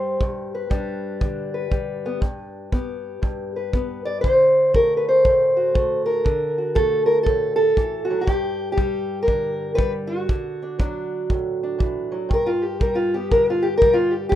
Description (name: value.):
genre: acoustic country blues, solo or duo.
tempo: 119 BPM.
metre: 4/4.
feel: swing 66% on 8ths.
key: G major.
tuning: A4 = 440 Hz.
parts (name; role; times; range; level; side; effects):
fingerpicked steel-string acoustic guitar; melody; 0.0-14.4 s; G2 to D5; -19 LUFS; equal; none.
kick drum; drums; 0.2-14.4 s; none; -23 LUFS; equal; none.
room: small room ambience.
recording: rough home demo mix.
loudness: -19 LUFS.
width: side -11 dB against mid.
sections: 0.0-12.3 A section; 12.3-14.4 B section.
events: steel-string acoustic guitar solo 12.3-14.4.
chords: 0.2 G; 4.2 D; 8.3 G5; 10.3 D; 12.3 G.